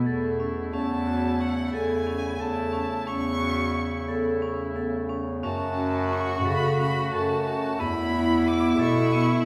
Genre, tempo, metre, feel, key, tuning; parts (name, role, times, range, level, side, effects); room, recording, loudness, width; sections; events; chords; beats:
contemporary instrumental, chamber music in an uneven meter; 179 BPM (eighths); 7/8; straight; A4 = 440 Hz
warm woodwind section; sustained chords; 0.0-9.5 s; B2 to F#4; -38 LUFS; equal
clear bass clarinet; bass; 0.0-9.3 s; E2 to C#3; -30 LUFS; equal
vibraphone with medium hard mallets; arpeggios; 0.1-9.4 s; B3 to A4; -31 LUFS; equal
clear violin; melody; 0.7-9.5 s; F#5 to D6; -34 LUFS; equal
bright cello; second line; 5.4-9.5 s; E4 to F#4; -30 LUFS; equal
wet recital hall reverb, RT60 1.7 s; heard from further back in the room; -26 LUFS; mono
0.0-9.5 A section
0.0 Esus4; 0.7 A/E; 5.4 F#m; 7.8 Esus4
0.07 0.40 | 0.73 1.07 1.40 1.73 2.07 2.40 2.73 | 3.07 3.41 3.74 4.08 4.42 4.76 5.10 | 5.44 5.78 6.12 6.46 6.79 7.13 7.46 | 7.80 8.13 8.47 8.80 9.13